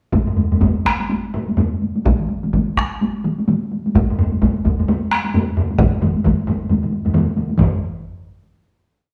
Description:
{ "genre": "japanese traditional, taiko drum ensemble", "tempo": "124-141 BPM", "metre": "4/4", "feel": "swing 60% on 16ths", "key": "none", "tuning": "none", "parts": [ { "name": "taiko ensemble", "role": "percussion", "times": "0.1-7.8 s", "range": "none", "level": "-22 LUFS", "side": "equal", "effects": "none" }, { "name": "taiko ensemble", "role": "percussion", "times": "0.1-8.0 s", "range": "none", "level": "-22 LUFS", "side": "equal", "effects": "none" }, { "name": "taiko ensemble", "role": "percussion", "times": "0.1-7.8 s", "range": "none", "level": "-24 LUFS", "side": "equal", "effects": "none" }, { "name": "taiko ensemble", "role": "percussion", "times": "2.0-8.0 s", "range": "none", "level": "-24 LUFS", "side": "equal", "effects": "none" } ], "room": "wet large studio reverb, RT60 1.0 s", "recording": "band playing live in one room", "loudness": "-18 LUFS", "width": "mono", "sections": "0.1-7.6 A section; 7.6-9.1 final hit", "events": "speeding up 0.1-9.1", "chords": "none" }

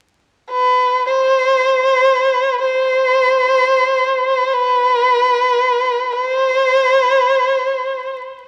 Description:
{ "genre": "caucasian folk", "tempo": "free time", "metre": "none", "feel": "none", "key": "unclear", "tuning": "A4 = 442 Hz", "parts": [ { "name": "warm erhu", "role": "solo", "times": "0.5-8.2 s", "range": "B4 to C5", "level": "-15 LUFS", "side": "equal", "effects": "cassette tape, tape echo" } ], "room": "wet spring reverb, RT60 1.5 s, small room reverb", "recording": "home recording on cassette, vinyl crackle", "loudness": "-15 LUFS", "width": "mono", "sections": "0.0-8.5 A section", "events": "none", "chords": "none" }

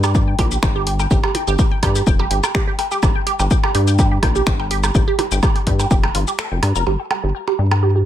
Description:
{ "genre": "minimal techno", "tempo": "125 BPM", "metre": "4/4", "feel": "swing 53% on 16ths", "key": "G minor", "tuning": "A4 = 443 Hz", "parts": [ { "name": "resonant blip pluck", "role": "riff", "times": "0.0-8.0 s", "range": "F4 to G5", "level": "-22 LUFS", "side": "right 3 dB", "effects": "phaser, sidechain pumping, ping-pong delay" }, { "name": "rubbery square bass", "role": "bass", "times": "0.0-8.0 s", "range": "F1 to G2", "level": "-18 LUFS", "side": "left 1 dB", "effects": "sidechain pumping" }, { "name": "punchy analog drum machine", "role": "drums", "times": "0.0-6.8 s", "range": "finger snaps, hi-hat, shaker", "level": "-26 LUFS", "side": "left 3 dB", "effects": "low-pass filter on hats, low-pass filter on snare, low-pass filter on perc, low-pass filter on room" }, { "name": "claves and percussion blips", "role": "percussion", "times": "0.0-7.8 s", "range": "none", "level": "-25 LUFS", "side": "right 4 dB", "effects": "overdrive, tape echo" }, { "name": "electronic kick drum", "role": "drums", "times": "0.1-6.0 s", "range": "none", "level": "-17 LUFS", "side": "left 1 dB", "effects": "none" } ], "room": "little or no reverb", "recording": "none", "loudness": "-15 LUFS", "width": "side -11 dB against mid", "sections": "0.0-6.9 A section; 6.9-8.1 B section", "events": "kick drops out 6.4-6.9", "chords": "none" }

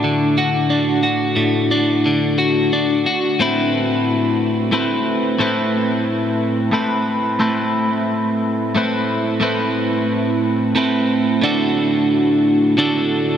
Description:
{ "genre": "rock", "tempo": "60 BPM (dotted quarters)", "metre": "6/8", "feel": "straight", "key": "A dorian", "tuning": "A4 = 441 Hz", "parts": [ { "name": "twelve-string electric guitar", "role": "solo", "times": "0.0-13.4 s", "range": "A2 to B4", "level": "-15 LUFS", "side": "equal", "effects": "phaser, analog delay" } ], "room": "wet huge ambient reverb, RT60 7.8 s", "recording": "dreamy mix soaked in reverb", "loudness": "-15 LUFS", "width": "side -9 dB against mid", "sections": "0.0-3.4 A section; 3.4-13.4 B section", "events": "none", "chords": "0.0 D/A; 3.4 Amadd9; 11.4 D/A" }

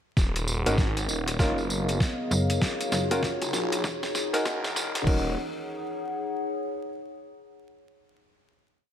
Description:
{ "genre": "glitch hop", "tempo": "98 BPM", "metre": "4/4", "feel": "swing 62% on 16ths", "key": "Eb minor", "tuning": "A4 = 441 Hz", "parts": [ { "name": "dark analog pad", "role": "sustained chords", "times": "0.2-5.4 s", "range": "E3 to Gb5", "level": "-36 LUFS", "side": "right 1 dB", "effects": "chorus, vintage 12-bit sampler grit, sidechain pumping" }, { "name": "phased detuned saw bass", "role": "bass", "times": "0.2-5.4 s", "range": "Eb1 to Bb1", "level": "-30 LUFS", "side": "equal", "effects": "phaser, tube saturation" }, { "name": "boom bap sampler-style drum kit", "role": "drums", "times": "0.2-5.2 s", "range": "crash cymbal, hi-hat, rim click, snare drum", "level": "-33 LUFS", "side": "left 1 dB", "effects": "high-pass filter on snare, high-pass filter on hats, high-pass filter on cymbals, gated reverb" }, { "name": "electronic kick drum", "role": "drums", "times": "0.2-5.2 s", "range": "none", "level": "-24 LUFS", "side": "equal", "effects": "none" }, { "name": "tambourine", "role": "percussion", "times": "0.2-5.0 s", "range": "none", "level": "-35 LUFS", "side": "right 2 dB", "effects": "none" }, { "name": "warbly tape-like pad", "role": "texture", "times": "1.6-7.5 s", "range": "Eb4 to Gb5", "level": "-33 LUFS", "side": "left 2 dB", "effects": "chorus, built-in reverb, sidechain pumping" }, { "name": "warm grand piano", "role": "stabs", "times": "0.7-5.3 s", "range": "Db4 to Bb4", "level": "-30 LUFS", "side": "equal", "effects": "sidechain pumping, low-pass filter, digital delay" }, { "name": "slap-like FM bass", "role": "bass", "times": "2.3-4.4 s", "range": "E1 to F#1", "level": "-28 LUFS", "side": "equal", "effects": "tube saturation" } ], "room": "light reverb", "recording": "bright 1980s-style digital production, vinyl crackle, high-pass filter", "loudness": "-25 LUFS", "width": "side -9 dB against mid", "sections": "0.2-5.1 build; 5.1-7.5 final chord", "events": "build-up 0.2-5.1; drum fill 0.2-5.1; filter sweep 0.2-5.1", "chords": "0.2 Ebm7; 1.4 Bmaj9#11; 2.6 Gbmaj7; 3.8 Emaj9#11; 5.1 Ebm7" }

